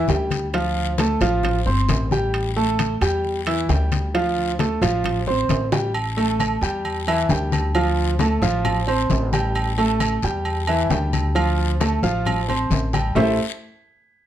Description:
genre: latin, Cuban son and guajira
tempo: 133 BPM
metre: 4/4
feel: straight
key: A minor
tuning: A4 = 440 Hz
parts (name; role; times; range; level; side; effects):
- warm grand piano; arpeggios; 0.0-13.4 s; E3 to C6; -22 LUFS; right 1 dB; none
- upright bass; bass; 0.0-13.4 s; G1 to E2; -24 LUFS; equal; none
- congas; percussion; 0.1-13.3 s; none; -26 LUFS; left 5 dB; none
- guiro; percussion; 0.1-13.3 s; none; -34 LUFS; left 9 dB; none
- timbales and agogo bells; percussion; 0.1-13.3 s; none; -27 LUFS; right 4 dB; none
room: light reverb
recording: close, detailed microphones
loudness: -18 LUFS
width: side -11 dB against mid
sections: 0.0-5.9 A section; 5.9-13.2 B section; 13.2-14.3 C section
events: drum fill 5.7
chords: 0.0 N.C.; 0.5 Dm7; 2.3 A5; 4.1 Dm7; 5.9 A5; 7.8 Dm7; 9.6 A5; 11.4 Dm7; 13.2 Am7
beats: 0.08 | 0.54 0.99 1.44 1.89 | 2.34 2.79 3.24 3.69 | 4.14 4.59 5.05 5.50 | 5.95 6.40 6.85 7.30 | 7.75 8.20 8.65 9.10 | 9.55 10.01 10.46 10.91 | 11.36 11.81 12.26 12.71 | 13.16

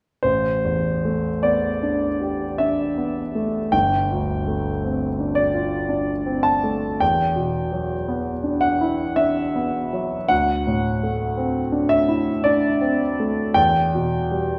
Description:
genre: classical, impressionist solo piano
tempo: 49-57 BPM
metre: 3/4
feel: rubato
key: A minor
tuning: A4 = 436 Hz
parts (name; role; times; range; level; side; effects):
- clear grand piano; solo; 0.2-14.6 s; G1 to A5; -22 LUFS; equal; none
room: wet concert hall reverb, RT60 1.9 s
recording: none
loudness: -22 LUFS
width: mono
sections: 0.2-14.6 A section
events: none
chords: 0.2 Am11; 3.7 G9sus4; 7.0 Em9; 10.3 D9; 13.6 Em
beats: | 0.23 1.44 2.60 | 3.73 4.84 5.91 | 7.01 8.10 9.19 | 10.31 11.39 12.46 | 13.57

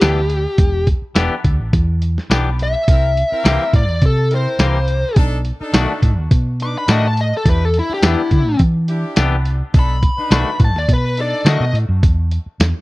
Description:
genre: straight-eighth soul blues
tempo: 105 BPM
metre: 4/4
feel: swing 54% on 16ths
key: E minor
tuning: A4 = 440 Hz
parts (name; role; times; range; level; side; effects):
- smooth overdriven lead guitar; melody; 0.0-11.8 s; E4 to D6; -20 LUFS; left 1 dB; none
- clean electric guitar; stabs; 0.0-11.6 s; D#3 to G4; -24 LUFS; left 4 dB; spring reverb
- hollow-body short-scale fingered electric bass; bass; 0.0-12.7 s; E1 to E3; -17 LUFS; equal; none
- lo-fi sampler-style drum kit; drums; 0.0-12.7 s; hi-hat, kick drum, snare drum, tambourine; -15 LUFS; equal; none
- bright horn section; sustained chords; 2.9-11.6 s; C4 to B4; -28 LUFS; equal; none
room: little or no reverb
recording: dry, close 1970s-style studio recording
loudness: -14 LUFS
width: side -20 dB against mid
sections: 0.0-12.0 A section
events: lead electric guitar solo 0.0-12.0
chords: 0.0 Em7; 2.9 C7; 5.2 B7#9; 7.5 Em7; 9.7 B7#9; 12.0 N.C.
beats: 0.01 | 0.59 1.16 1.73 2.31 | 2.88 3.45 4.02 4.59 | 5.17 5.74 6.31 6.88 | 7.46 8.03 8.60 9.17 | 9.74 10.31 10.88 11.46 | 12.03 12.60

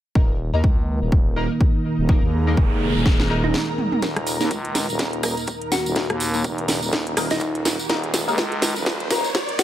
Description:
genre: bass house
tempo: 124 BPM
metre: 4/4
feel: swing 58% on 16ths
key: unclear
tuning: A4 = 443 Hz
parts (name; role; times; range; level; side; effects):
- dark analog pad; sustained chords; 0.2-9.6 s; Eb3 to Bb4; -28 LUFS; right 2 dB; chorus, sidechain pumping
- band-passed chord stab; stabs; 0.2-9.3 s; Bb3 to Bb4; -29 LUFS; left 2 dB; phaser, ensemble chorus, sidechain pumping, tape echo
- growling FM bass; bass; 0.2-9.2 s; Eb1 to Eb2; -25 LUFS; equal; sidechain pumping, high-pass filter
- electronic kick drum; drums; 0.2-9.5 s; none; -19 LUFS; equal; high-pass filter on kick, small room ambience
- ethereal airy pad; texture; 1.0-9.6 s; Eb4 to Bb5; -30 LUFS; right 1 dB; ensemble chorus, built-in reverb, tremolo, sidechain pumping
- noise sweep and riser; sound effects; 2.4-9.6 s; none; -32 LUFS; right 1 dB; none
- house drum kit; drums; 3.1-9.6 s; hi-hat, rim click, snare drum, toms; -24 LUFS; equal; small room ambience
- thumb-piano-like synth pluck; melody; 3.4-9.6 s; Eb4 to Gb4; -28 LUFS; equal; chorus, phaser, tape echo
- tambourine; percussion; 4.0-9.6 s; none; -30 LUFS; right 2 dB; none
room: light reverb, digital ambience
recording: high-pass filter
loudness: -19 LUFS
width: side -12 dB against mid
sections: 0.2-4.0 A section; 4.0-9.6 B section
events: filter sweep on synth stab 0.2-4.0; noise sweep 2.4-4.0; drum fill 3.1-4.0, 4.0-9.6; break 3.5-4.0; build-up 4.0-9.6; filter sweep on analog synth pad 4.0-9.6; riser 5.5-9.6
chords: 0.2 Eb5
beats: | 0.15 0.64 1.12 1.61 | 2.09 2.57 3.06 3.54 | 4.03 4.51 4.99 5.48 | 5.96 6.44 6.93 7.41 | 7.90 8.38 8.86 9.35

